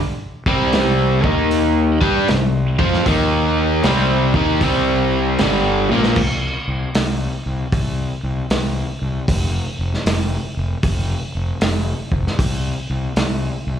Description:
blues rock power trio and southern rock; 77 BPM; 4/4; swing 65% on 8ths; A4 = 440 Hz
crunchy overdriven guitar; riff; 0.5-6.2 s; G2 to G4; -16 LUFS; equal; slapback echo
fuzz fingered electric bass; bass; 0.5-13.8 s; F1 to G2; -21 LUFS; left 1 dB; overdrive
vintage drum kit; drums; 0.5-13.4 s; crash cymbal, hi-hat, kick drum, snare drum, toms; -22 LUFS; equal
small room ambience; live gig heard through the venue's PA, club reverb; -16 LUFS; side -9 dB against mid
0.0-6.2 A section; 6.2-13.8 B section
drum fill 5.8-6.2
0.3 C5; 1.1 Eb5; 1.9 C5; 3.1 Eb5; 3.8 C5; 5.4 G5; 6.2 N.C.

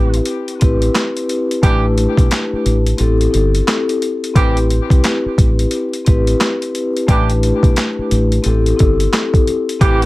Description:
hip hop, boom-bap hip-hop; 88 BPM; 4/4; swing 62% on 16ths; A minor; A4 = 440 Hz
vibraphone with soft mallets; accompaniment; 0.0-10.1 s; A3 to B4; -18 LUFS; left 2 dB; high-pass filter, low-pass filter, plate reverb
deep dub fingered electric bass; bass; 0.0-10.1 s; G1 to C2; -16 LUFS; equal
boom bap sampler-style drum kit; drums; 0.1-10.1 s; handclaps, hi-hat, kick drum, snare drum; -15 LUFS; equal
warm horn section; stabs; 1.6-10.1 s; E3 to G4; -23 LUFS; right 3 dB; high-pass filter, low-pass filter, ping-pong delay, plate reverb
light reverb; vinyl crackle; -12 LUFS; side -19 dB against mid
0.0-10.1 A section
kick muted 3.0-4.4
0.0 Am9; 1.6 A9sus4; 3.0 Am7/G; 4.4 Am9; 7.1 A9sus4; 8.4 Am7/G

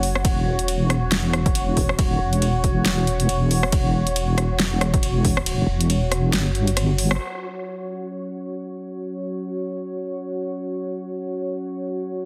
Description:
deep dubstep; 138 BPM; 4/4; swing 57% on 16ths, half-time; A4 = 440 Hz
deep dark ambient pad; sustained chords; 0.0-12.3 s; F#4 to C#5; -30 LUFS; equal; chorus, built-in reverb
deep soft wobble bass; bass; 0.0-7.2 s; E1 to G1; -23 LUFS; equal; chorus
deep house drum kit; drums; 0.0-7.2 s; hi-hat, ride cymbal, rim click, snare drum; -28 LUFS; equal; overdrive
electronic kick drum; drums; 0.2-5.3 s; -24 LUFS; equal; overdrive
light reverb, digital ambience; heavily compressed radio sound, multiband compression; -22 LUFS; mono
0.0-7.2 A section; 7.2-12.3 B section
drop 0.0-7.2; kick drops out 5.5-7.2; band accent 7.1
0.2 Em; 7.2 F#5

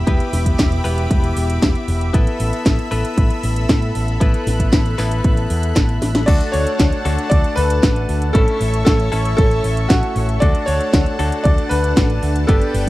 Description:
italo disco; 116 BPM; 4/4; straight; D major; A4 = 440 Hz
lush unison pad; sustained chords; 0.0-12.9 s; D4 to F#6; -26 LUFS; equal; chorus
direct-recorded clean electric guitar; stabs; 0.0-12.9 s; A3 to B4; -25 LUFS; left 4 dB
picked electric bass with an envelope filter; bass; 0.0-12.9 s; E1 to A2; -19 LUFS; equal
electronic kick drum; drums; 0.1-12.6 s; -16 LUFS; equal; small room reverb
house drum kit; drums; 0.1-12.8 s; crash cymbal, handclaps, hi-hat, snare drum; -21 LUFS; equal; small room reverb
bright concert grand piano; melody; 6.3-12.9 s; F#4 to D5; -21 LUFS; equal; tape echo
little or no reverb; dry, close 1970s-style studio recording, faint mains hum; -14 LUFS; side -17 dB against mid
0.0-6.3 A section; 6.3-12.9 B section
drum fill 6.0; band accent 6.2
0.0 Em; 2.1 Asus2; 6.3 D; 8.3 A; 10.4 D

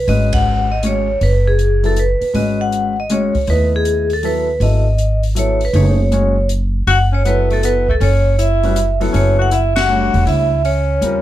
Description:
modal jazz; 159 BPM; 3/4; swing 66% on 8ths; F# phrygian from 6.9 s; A4 = 440 Hz
vibraphone with medium hard mallets; melody; 0.0-11.2 s; G#4 to F#5; -18 LUFS; right 1 dB
upright bass; bass; 0.0-11.2 s; E1 to E2; -16 LUFS; equal
warm grand piano; accompaniment; 0.1-11.2 s; F#3 to D#5; -21 LUFS; left 3 dB
open jazz drum kit; drums; 0.1-11.1 s; hi-hat, kick drum, ride cymbal, snare drum; -26 LUFS; equal
breathy tenor saxophone; second line; 6.9-11.2 s; A3 to F#4; -21 LUFS; left 6 dB
little or no reverb; dark, warm production; -13 LUFS; side -13 dB against mid
0.0-6.9 A section; 6.9-11.2 B section
band accent 0.3, 9.7
0.1 Bsus2/G#; 2.3 G#m7; 4.6 Bsus2/G#; 6.9 F#m7

